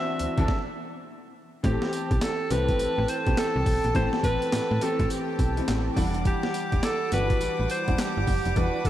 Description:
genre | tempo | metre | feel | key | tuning
R&B, new jack swing | 104 BPM | 4/4 | swing 63% on 16ths | unclear | A4 = 440 Hz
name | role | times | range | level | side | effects
clear alto saxophone | melody | 0.0-8.9 s | G4 to E5 | -29 LUFS | equal | none
clear baby grand piano | accompaniment | 0.0-8.9 s | E3 to F#5 | -31 LUFS | left 1 dB | ensemble chorus
slap-like FM bass | bass | 0.2-8.9 s | E1 to A2 | -28 LUFS | equal | none
boom bap sampler-style drum kit | drums | 0.2-8.9 s | handclaps, hi-hat, kick drum, snare drum, tambourine | -28 LUFS | equal | overdrive
rich chamber string section | sustained chords | 1.6-8.9 s | G3 to D6 | -33 LUFS | right 1 dB | none
room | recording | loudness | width
moderate church reverb, RT60 2.6 s | dreamy mix soaked in reverb | -23 LUFS | side -12 dB against mid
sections
0.0-1.6 A section; 1.6-8.9 B section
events
stop 0.5-1.6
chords
0.0 D9; 1.6 Am7; 6.0 Em9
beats
0.48 1.06 | 1.64 2.22 2.79 3.37 | 3.95 4.52 5.10 5.68 | 6.25 6.83 7.41 7.99 | 8.56

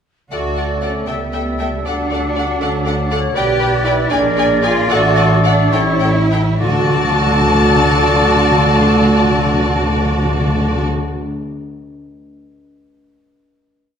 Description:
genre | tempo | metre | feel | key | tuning
quick classical-period movement for symphony orchestra | 66-81 BPM (dotted quarters) | 6/8 | rubato | D major | A4 = 435 Hz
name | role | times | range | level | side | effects
warm studio violin section | melody | 0.3-10.8 s | F#5 to A5 | -22 LUFS | left 5 dB | none
bright clarinet | second line | 0.3-10.8 s | A4 to B4 | -26 LUFS | left 3 dB | none
large flute ensemble | second line | 0.3-10.8 s | A4 to A5 | -22 LUFS | right 1 dB | none
mellow oboe | second line | 0.3-10.8 s | C#5 to E5 | -26 LUFS | left 1 dB | none
rich chamber violin section | second line | 0.3-10.8 s | C#5 to E5 | -26 LUFS | left 3 dB | none
rich studio viola section | accompaniment | 0.3-10.8 s | F#4 to B4 | -26 LUFS | right 2 dB | none
warm bassoon | accompaniment | 0.3-10.8 s | D3 to A3 | -25 LUFS | right 1 dB | none
mellow French horn section | sustained chords | 0.3-10.8 s | A3 to A4 | -25 LUFS | left 4 dB | none
rich studio double bass section | bass | 0.3-10.8 s | A1 to D2 | -20 LUFS | right 1 dB | none
warm chamber cello section | bass | 0.3-10.8 s | A3 to G4 | -20 LUFS | right 2 dB | none
timpani | percussion | 0.3-1.0, 6.6-11.0 s | D3 | -18 LUFS | equal | none
room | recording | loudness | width
wet recital hall reverb, RT60 1.5 s | recorded in a church or concert hall | -12 LUFS | side -8 dB against mid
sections
0.3-6.6 A section; 6.6-10.1 final chord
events
slowing down 2.6-6.6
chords
0.3 D; 1.1 A7/C#; 1.9 D; 3.4 G/B; 4.1 Bb7; 4.9 D/A; 5.7 A7; 6.6 D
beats
| 0.32 1.09 | 1.86 2.62 | 3.35 4.11 | 4.90 5.73 | 6.61 7.47 | 8.34 9.20

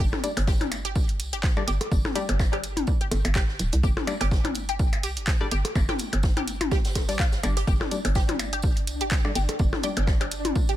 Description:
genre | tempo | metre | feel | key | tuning
minimal techno | 125 BPM | 4/4 | swing 56% on 16ths | unclear | A4 = 440 Hz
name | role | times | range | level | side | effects
resonant blip pluck | riff | 0.0-10.7 s | F4 to G4 | -34 LUFS | equal | phaser, analog chorus, cassette tape, sidechain pumping, digital delay
hollow knocking FM bass | bass | 0.0-10.5 s | D1 to C2 | -28 LUFS | equal | sidechain pumping
electronic kick drum | drums | 0.0-10.7 s | none | -24 LUFS | equal | none
open jazz drum kit | drums | 0.1-10.7 s | hi-hat, snare drum, tambourine | -40 LUFS | right 2 dB | sidechain pumping on hats, high-pass filter on hats, high-pass filter on snare, sidechain pumping on perc, high-pass filter on perc, high-pass filter on room
electronic toms and percussion blips | percussion | 0.1-10.5 s | none | -31 LUFS | left 3 dB | overdrive, ping-pong delay
filtered dub chord stab | stabs | 0.2-10.0 s | G3 to D5 | -34 LUFS | left 4 dB | chorus, cassette tape, ping-pong delay
punchy analog drum machine | drums | 0.2-10.8 s | handclaps, hi-hat | -32 LUFS | right 2 dB | none
pulsing gated texture | texture | 7.7-10.8 s | D4 to D5 | -37 LUFS | left 1 dB | chorus, built-in reverb, sidechain pumping
room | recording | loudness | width
digital ambience | none | -22 LUFS | side -13 dB against mid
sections
0.0-10.8 A section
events
none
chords
0.0 G5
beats
| 0.00 0.47 0.95 1.44 | 1.92 2.40 2.88 3.35 | 3.83 4.32 4.79 5.28 | 5.75 6.24 6.71 7.20 | 7.67 8.15 8.63 9.12 | 9.60 10.07 10.55

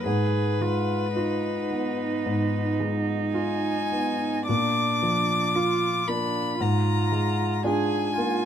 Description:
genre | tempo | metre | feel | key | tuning
classical, slow romantic movement for piano trio | 50-58 BPM | 4/4 | rubato | unclear | A4 = 441 Hz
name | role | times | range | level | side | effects
rich violin | melody | 0.0-8.5 s | Cb5 to D6 | -28 LUFS | left 5 dB | none
warm cello | second line | 0.0-8.5 s | D4 to Ab4 | -29 LUFS | right 8 dB | none
warm grand piano | accompaniment | 0.0-8.5 s | Ab2 to F4 | -26 LUFS | equal | none
room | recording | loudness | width
little or no reverb | close, detailed microphones | -23 LUFS | side -9 dB against mid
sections
0.0-8.5 A section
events
none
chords
0.1 Fdim/Ab; 4.5 Bb; 6.6 Bb7/Ab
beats
| 0.05 1.15 2.25 3.33 | 4.48 5.54 6.60 7.65

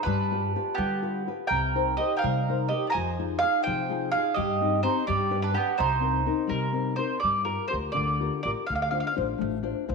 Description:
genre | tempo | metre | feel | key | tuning
italian folk, Italian serenade | 84 BPM (dotted quarters) | 6/8 | straight | C minor | A4 = 440 Hz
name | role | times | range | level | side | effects
mandolin | melody | 0.0-9.1 s | G4 to Bb5 | -28 LUFS | right 2 dB | none
mandolin | second line | 0.0-6.7 s | B3 to D5 | -30 LUFS | right 8 dB | none
nylon-string guitar | accompaniment | 0.1-9.9 s | C3 to F5 | -30 LUFS | left 11 dB | none
upright bass | bass | 0.1-9.9 s | A1 to G3 | -31 LUFS | equal | none
room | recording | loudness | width
wet echo chamber reverb, RT60 1.7 s, studio ambience | 1960s-style stereo with parts hard left and right | -24 LUFS | side -4 dB against mid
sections
0.0-7.2 A section; 7.2-9.9 B section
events
nylon-string guitar fill 9.4-9.9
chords
0.1 G7; 1.5 Cm7; 2.9 Fm7; 4.4 Cm/G; 5.1 G; 5.8 Cm7; 7.2 Gm7; 8.7 Dm7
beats
| 0.06 0.79 | 1.51 2.23 | 2.95 3.66 | 4.37 5.08 | 5.79 6.51 | 7.24 7.97 | 8.69 9.40

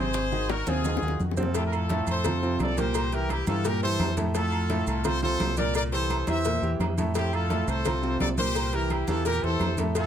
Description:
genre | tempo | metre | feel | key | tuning
latin, salsa | 171 BPM | 4/4 | straight | F major | A4 = 440 Hz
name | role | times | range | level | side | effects
bright trumpet section | melody | 0.0-10.1 s | C4 to E5 | -30 LUFS | left 1 dB | none
clear upright piano | accompaniment | 0.0-10.1 s | A2 to C5 | -30 LUFS | right 1 dB | none
fingered electric bass | bass | 0.0-10.1 s | Ab1 to G2 | -29 LUFS | equal | none
bongos and cowbell | percussion | 0.1-10.1 s | none | -36 LUFS | left 8 dB | none
congas | percussion | 0.1-10.1 s | none | -35 LUFS | left 1 dB | none
maracas | percussion | 0.1-10.1 s | none | -42 LUFS | right 10 dB | none
timbales and agogo bells | percussion | 0.1-10.1 s | none | -37 LUFS | right 6 dB | none
room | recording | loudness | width
light reverb | close, detailed microphones | -24 LUFS | side -9 dB against mid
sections
0.0-1.5 A section; 1.5-10.1 B section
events
drum fill 0.5-1.5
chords
0.1 Ab7; 1.5 F; 2.9 C7; 4.3 F; 5.7 C7; 7.2 Fadd9; 8.6 C7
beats
| 0.14 0.49 0.84 1.20 | 1.55 1.90 2.25 2.60 | 2.95 3.30 3.65 4.00 | 4.35 4.70 5.05 5.40 | 5.75 6.10 6.45 6.80 | 7.15 7.50 7.85 8.20 | 8.55 8.90 9.26 9.61 | 9.96

